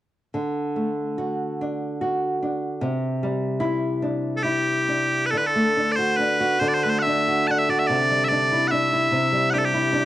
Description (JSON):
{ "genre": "celtic folk, Celtic slow air", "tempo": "72 BPM", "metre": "3/4", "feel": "uneven beats, rubato", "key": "D mixolydian", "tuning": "A4 = 440 Hz", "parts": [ { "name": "nylon-string guitar", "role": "accompaniment", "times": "0.3-10.1 s", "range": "C3 to F#4", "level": "-23 LUFS", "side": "equal", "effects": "cassette tape" }, { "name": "loud bright bagpipes", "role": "melody", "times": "4.4-10.1 s", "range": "G4 to A5", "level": "-20 LUFS", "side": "equal", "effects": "cassette tape" } ], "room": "light reverb, small room ambience", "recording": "home recording on cassette", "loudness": "-20 LUFS", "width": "side -14 dB against mid", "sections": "0.3-5.3 A section; 5.3-10.1 B section", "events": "none", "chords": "0.3 D; 2.8 Cadd9; 5.3 D; 7.9 Cadd9", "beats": "| 0.35 1.21 2.03 | 2.82 3.62 4.45 | 5.32 6.18 7.03 | 7.87 8.69 9.51" }